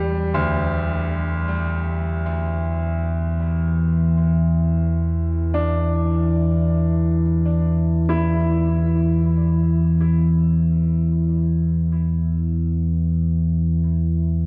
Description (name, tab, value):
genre	dark ambient drone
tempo	free time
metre	none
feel	none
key	unclear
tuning	A4 = 441 Hz
part	bright grand piano	arpeggios	0.0-14.5 s	D2 to E4	-30 LUFS	equal	tape echo, shimmer reverb
part	deep rumbling drone	drone	0.0-14.5 s	E2 to E3	-20 LUFS	equal	built-in reverb
room	wet cathedral reverb, RT60 7.2 s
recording	in a vast, echoing space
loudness	-20 LUFS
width	mono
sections	0.0-14.5 A section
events	none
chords	0.0 Dsus24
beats	free time